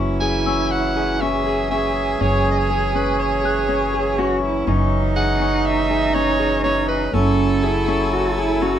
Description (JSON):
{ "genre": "contemporary instrumental, chamber music in an uneven meter", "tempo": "122 BPM", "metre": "5/4", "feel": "straight", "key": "unclear", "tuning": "A4 = 439 Hz", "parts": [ { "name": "dark cello", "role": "second line", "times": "0.0-8.8 s", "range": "C#4 to G#4", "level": "-22 LUFS", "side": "right 5 dB", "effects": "none" }, { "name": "accordion", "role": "sustained chords", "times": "0.0-8.8 s", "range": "E3 to G#5", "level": "-27 LUFS", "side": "left 1 dB", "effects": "none" }, { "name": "Celtic harp", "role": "arpeggios", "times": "0.0-8.8 s", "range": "C#4 to G#4", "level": "-24 LUFS", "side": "left 7 dB", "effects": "none" }, { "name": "upright bass", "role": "bass", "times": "0.0-8.8 s", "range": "F#1", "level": "-23 LUFS", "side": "right 1 dB", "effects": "none" }, { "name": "bright soprano saxophone", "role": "melody", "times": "0.2-8.8 s", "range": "A4 to G#5", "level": "-24 LUFS", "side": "right 1 dB", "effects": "none" }, { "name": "celesta", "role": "texture", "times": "0.5-3.9 s", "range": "E6 to F#6", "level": "-28 LUFS", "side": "left 6 dB", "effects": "none" } ], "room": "light reverb", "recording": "none", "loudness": "-17 LUFS", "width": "side -10 dB against mid", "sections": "0.0-8.8 A section", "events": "none", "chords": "0.0 C#madd9/F#; 7.1 F#m9" }